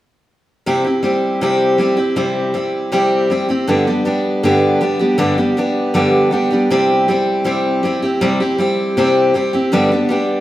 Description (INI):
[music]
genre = country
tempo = 159 BPM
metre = 4/4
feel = straight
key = C major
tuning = A4 = 440 Hz
[part]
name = picked steel-string acoustic guitar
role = solo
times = 0.7-10.4 s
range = G2 to G4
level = -13 LUFS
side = equal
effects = none
[sound]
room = wet large studio reverb, RT60 1.3 s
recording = none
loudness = -13 LUFS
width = side -14 dB against mid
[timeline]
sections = 0.7-10.4 A section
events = none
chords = 0.7 C; 3.7 G; 6.7 C; 9.7 G